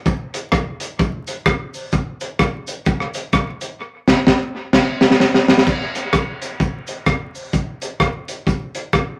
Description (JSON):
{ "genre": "ska", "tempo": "128 BPM", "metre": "4/4", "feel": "swing 60% on 8ths", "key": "none", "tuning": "none", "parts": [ { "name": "crunchy breakbeat drum kit", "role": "drums", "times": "0.1-9.1 s", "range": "crash cymbal, hi-hat, kick drum, rim click, snare drum", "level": "-19 LUFS", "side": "equal", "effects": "dub echo" }, { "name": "cabasa", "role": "percussion", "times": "0.1-9.1 s", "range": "none", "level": "-41 LUFS", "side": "equal", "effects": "dub echo" } ], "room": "moderate studio reverb, RT60 0.5 s", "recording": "vinyl crackle", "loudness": "-19 LUFS", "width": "mono", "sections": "0.0-5.7 A section; 5.7-9.2 B section", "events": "drum fill 3.8-5.7; band accent 3.8-5.7", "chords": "none", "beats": "| 0.06 0.53 1.00 1.46 | 1.93 2.40 2.87 3.33 | 3.80 4.27 4.73 5.20 | 5.67 6.13 6.60 7.07 | 7.54 8.00 8.47 8.94" }